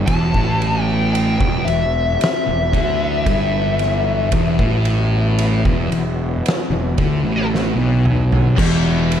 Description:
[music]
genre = stoner and doom metal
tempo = 56 BPM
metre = 4/4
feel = straight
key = E minor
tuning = A4 = 440 Hz
[part]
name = percussive tonewheel organ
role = sustained chords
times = 0.0-8.5 s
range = E3 to B3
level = -30 LUFS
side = right 2 dB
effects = none
[part]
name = thick fuzz guitar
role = riff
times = 0.0-9.2 s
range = E2 to D3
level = -21 LUFS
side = left 5 dB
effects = distortion
[part]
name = thick fuzz guitar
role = riff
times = 0.0-9.2 s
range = E2 to D3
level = -22 LUFS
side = right 7 dB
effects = distortion
[part]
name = fuzz fingered electric bass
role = bass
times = 0.0-9.2 s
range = E1 to D2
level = -21 LUFS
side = right 1 dB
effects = overdrive
[part]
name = fuzz lead guitar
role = melody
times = 0.1-7.5 s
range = E5 to A5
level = -22 LUFS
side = left 4 dB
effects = distortion, slapback echo
[part]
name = oversized low-tuned drum kit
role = drums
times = 0.1-9.2 s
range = crash cymbal, kick drum, ride cymbal, snare drum, toms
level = -22 LUFS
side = equal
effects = none
[part]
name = tight distorted guitar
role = riff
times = 8.6-9.2 s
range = E2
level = -24 LUFS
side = left 1 dB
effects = distortion
[sound]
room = light reverb, small room ambience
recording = dark, warm production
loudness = -15 LUFS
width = side -9 dB against mid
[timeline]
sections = 0.0-8.6 A section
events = drum fill 7.5-8.6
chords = 0.0 Em; 8.6 N.C.

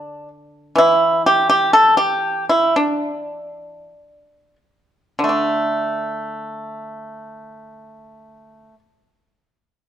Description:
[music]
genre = chinese traditional, Chinese solo plucked strings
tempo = 40-66 BPM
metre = 2/4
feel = rubato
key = unclear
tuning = A4 = 441 Hz
[part]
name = pipa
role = solo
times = 0.0-8.8 s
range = D3 to A4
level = -16 LUFS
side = equal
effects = none
[sound]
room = moderate recital hall reverb, RT60 1.4 s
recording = dark, warm production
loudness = -14 LUFS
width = side -10 dB against mid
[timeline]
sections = 0.0-5.3 A section; 5.3-9.9 B section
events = slowing down 0.8-5.3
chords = none

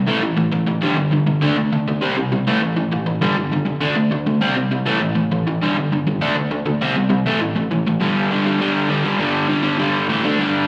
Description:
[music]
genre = punk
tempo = 201 BPM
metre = 4/4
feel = straight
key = unclear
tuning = A4 = 440 Hz
[part]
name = crunchy overdriven guitar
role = solo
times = 0.0-10.7 s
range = G2 to D4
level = -19 LUFS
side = equal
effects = slapback echo, delay
[sound]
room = light reverb, digital ambience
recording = live gig heard through the venue's PA, club ambience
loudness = -19 LUFS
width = mono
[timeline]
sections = 0.0-8.0 A section; 8.0-10.7 B section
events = none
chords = 0.1 A5; 0.8 G5; 1.4 D5; 2.0 C5; 2.5 A5; 3.2 G5; 3.8 D5; 4.4 C5; 4.8 A5; 5.6 G5; 6.2 D5; 6.8 C5; 7.2 A5; 8.0 G5; 10.1 A5; 10.2 D5

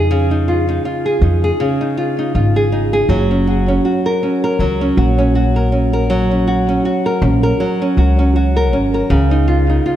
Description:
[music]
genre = folktronica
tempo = 80 BPM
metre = 4/4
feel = swing 56% on 16ths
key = unclear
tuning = A4 = 438 Hz
[part]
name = nylon-string guitar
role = arpeggios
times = 0.0-10.0 s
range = Db3 to Bb4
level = -15 LUFS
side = right 1 dB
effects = ping-pong delay
[part]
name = upright bass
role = bass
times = 0.0-9.8 s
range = Gb1 to F2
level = -15 LUFS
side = equal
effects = none
[sound]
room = moderate scoring stage reverb, RT60 1.7 s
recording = dark, warm production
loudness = -13 LUFS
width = side -11 dB against mid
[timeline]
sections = 0.0-10.0 A section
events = none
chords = 0.0 Dbadd9; 3.1 Gb; 9.1 Dbadd9

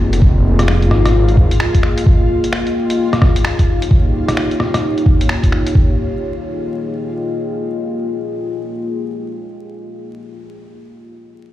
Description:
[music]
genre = future garage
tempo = 130 BPM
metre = 4/4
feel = swing 62% on 16ths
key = F minor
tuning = A4 = 440 Hz
[part]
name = deep dark ambient pad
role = sustained chords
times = 0.0-9.0 s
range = Bb3 to G5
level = -20 LUFS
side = left 2 dB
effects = chorus, built-in reverb, sidechain pumping
[part]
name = swelling detuned saw bass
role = bass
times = 0.0-1.5 s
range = F1 to Ab1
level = -13 LUFS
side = equal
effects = sidechain pumping
[part]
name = backwards swelling texture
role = texture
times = 0.0-5.8 s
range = F4 to F5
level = -28 LUFS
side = equal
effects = built-in reverb
[part]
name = lo-fi sampler-style drum kit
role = drums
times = 0.1-5.7 s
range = finger snaps, hi-hat, rim click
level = -21 LUFS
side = equal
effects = none
[part]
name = electronic kick drum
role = drums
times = 0.2-5.9 s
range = none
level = -11 LUFS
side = equal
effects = none
[sound]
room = light reverb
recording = played on a big sound system in a bare room, large studio reverb, vinyl crackle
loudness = -13 LUFS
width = side -14 dB against mid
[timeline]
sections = 0.0-5.8 A section; 5.8-9.4 B section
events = none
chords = 0.0 Fm11; 2.1 Eb7; 5.8 Fm11

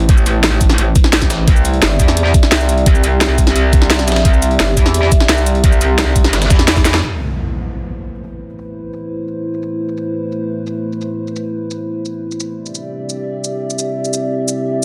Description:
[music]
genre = dark technical drum and bass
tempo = 173 BPM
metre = 4/4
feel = straight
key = A minor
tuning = A4 = 442 Hz
[part]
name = dark analog pad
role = sustained chords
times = 0.0-14.8 s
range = A3 to E5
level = -23 LUFS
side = equal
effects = lush chorus, sidechain pumping
[part]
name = metallic wobble bass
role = bass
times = 0.0-7.0 s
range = G1 to E2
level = -17 LUFS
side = equal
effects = chorus, tube saturation, sidechain pumping
[part]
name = breakbeat sampler-style drum kit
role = drums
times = 0.0-7.0 s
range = hi-hat, snare drum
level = -27 LUFS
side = equal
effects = high-pass filter on hats, high-pass filter on snare, high-pass filter on room
[part]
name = drum and bass drum kit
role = drums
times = 0.1-14.6 s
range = hi-hat, shaker, snare drum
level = -19 LUFS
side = equal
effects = overdrive, low-pass filter on hats, low-pass filter on snare, low-pass filter on perc, low-pass filter on room
[part]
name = electronic kick drum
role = drums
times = 0.1-6.8 s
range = none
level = -14 LUFS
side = equal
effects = overdrive
[part]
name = impact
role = sound effects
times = 7.0-8.4 s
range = none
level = -26 LUFS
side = equal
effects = none
[sound]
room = light reverb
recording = dense, heavily limited modern master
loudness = -14 LUFS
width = mono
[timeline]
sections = 0.0-7.0 A section; 7.0-14.8 B section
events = drum fill 6.8; band accent 6.9; impact 7.0-8.4; filter sweep on drum 7.0-14.8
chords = 0.0 Am; 1.5 C; 7.0 Am; 12.6 C

